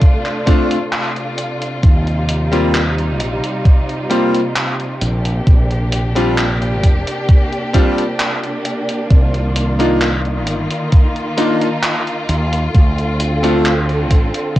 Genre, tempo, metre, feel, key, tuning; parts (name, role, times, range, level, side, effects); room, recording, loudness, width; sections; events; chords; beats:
vaporwave; 66 BPM; 4/4; straight; Bb major; A4 = 440 Hz
rich studio string section; sustained chords; 0.0-14.6 s; C3 to A4; -21 LUFS; equal; vintage 12-bit sampler grit, cassette tape
electronic kick drum; drums; 0.0-14.6 s; -10 LUFS; equal; vintage 12-bit sampler grit, cassette tape
gated 80s digital drum machine; drums; 0.0-14.6 s; handclaps, hi-hat; -22 LUFS; equal; gated reverb, vintage 12-bit sampler grit, cassette tape
bright electric grand piano; accompaniment; 0.5-13.7 s; G3 to F4; -18 LUFS; left 1 dB; wide subtle chorus, vintage 12-bit sampler grit, cassette tape, analog delay
fretless electric bass; bass; 1.8-14.3 s; F1 to Eb2; -18 LUFS; equal; tube saturation
light reverb; home recording on cassette; -13 LUFS; side -15 dB against mid
0.0-14.6 A section
0.0 Dm7; 1.8 Eb69; 5.0 Bb69; 9.1 Cm11; 12.7 Dm7
0.02 0.93 | 1.83 2.74 3.65 4.56 | 5.47 6.38 7.29 8.20 | 9.11 10.02 10.93 11.83 | 12.74 13.65 14.56